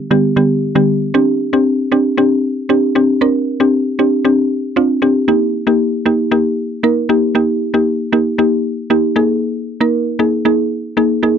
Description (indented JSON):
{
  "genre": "pop",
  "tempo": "116 BPM",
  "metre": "4/4",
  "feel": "straight",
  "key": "C minor",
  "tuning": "A4 = 445 Hz",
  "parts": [
    { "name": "mallet-like synth pluck", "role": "solo", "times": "0.1-11.4 s", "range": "D3 to Bb4", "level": "-12 LUFS", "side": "equal", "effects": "chorus" }
  ],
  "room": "moderate booth ambience, RT60 0.2 s",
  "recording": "dry, close 1970s-style studio recording",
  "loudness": "-12 LUFS",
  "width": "side -8 dB against mid",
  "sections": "0.0-1.1 A section; 1.1-11.4 B section",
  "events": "build-up 0.0-1.1; drop 1.1-11.4",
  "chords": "0.0 G; 1.1 Csus2; 5.3 Eb; 9.2 Absus2"
}